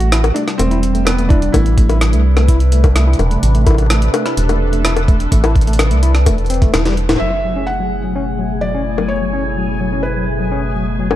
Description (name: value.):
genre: IDM.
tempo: 127 BPM.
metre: 4/4.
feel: straight.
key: F# minor.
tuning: A4 = 439 Hz.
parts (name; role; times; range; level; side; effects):
felt-muted upright piano; melody; 0.0-3.1, 7.2-10.7 s; B3 to F#5; -22 LUFS; right 1 dB; tape echo.
phased analog pad; sustained chords; 0.3-11.2 s; B2 to B4; -22 LUFS; equal; phaser, chorus, vintage 12-bit sampler grit.
overdriven tine electric piano; arpeggios; 0.0-11.2 s; A2 to E4; -23 LUFS; left 1 dB; medium tremolo, low-pass filter, digital delay.
rubbery square bass; bass; 0.0-11.2 s; E1 to C2; -15 LUFS; equal; tube saturation.
jungle sampler-style drum kit; drums; 0.0-11.2 s; bongos, hi-hat, rim click, snare drum; -19 LUFS; left 3 dB; overdrive.
electronic kick drum; drums; 1.3-6.7 s; none; -12 LUFS; equal; overdrive.
bubbling stepped-filter texture; texture; 7.2-11.2 s; G#4 to G#5; -28 LUFS; equal; chorus, built-in reverb.
room: light reverb, digital ambience.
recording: dark, warm production.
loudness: -12 LUFS.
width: side -13 dB against mid.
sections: 0.0-7.2 A section; 7.2-11.2 B section.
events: drum fill 6.7-7.2; band accent 7.1; filter sweep on analog synth pad 7.2-11.2.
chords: 0.0 Am11; 7.2 F#m11.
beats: 0.12 0.59 1.07 | 1.54 2.01 2.48 2.96 | 3.43 3.90 4.37 4.85 | 5.32 5.79 6.26 6.74 | 7.21 7.68 8.15 8.63 | 9.10 9.57 10.04 10.52 | 10.99.